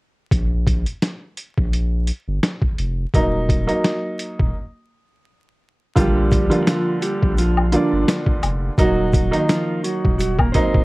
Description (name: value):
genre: hip hop, boom-bap hip-hop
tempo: 85 BPM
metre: 4/4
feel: swing 55% on 16ths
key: Bb major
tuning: A4 = 440 Hz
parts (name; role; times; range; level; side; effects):
- saturated sub bass; bass; 0.3-10.8 s; D1 to Bb1; -21 LUFS; equal; none
- boom bap sampler-style drum kit; drums; 0.3-10.8 s; hi-hat, kick drum, snare drum; -19 LUFS; equal; none
- warm upright piano; accompaniment; 3.1-10.8 s; D3 to F4; -21 LUFS; right 1 dB; cassette tape, high-pass filter, low-pass filter
- mellow electric guitar; melody; 6.0-10.8 s; F3 to D5; -22 LUFS; right 2 dB; high-pass filter, low-pass filter, ping-pong delay
- tube shaker and woodblock; percussion; 6.0-10.7 s; none; -26 LUFS; left 4 dB; none
room: light reverb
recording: worn, warbling old tape, cassette tape, vinyl crackle, warbly pitch drift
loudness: -17 LUFS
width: side -21 dB against mid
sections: 0.3-6.0 A section; 6.0-10.8 B section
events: break 4.5-6.0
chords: 0.3 Bb5; 3.1 Ebm; 6.0 Bb6; 8.8 Ebm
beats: | 0.31 1.02 1.73 2.43 | 3.14 3.84 4.55 5.25 | 5.96 6.67 7.37 8.08 | 8.79 9.49 10.20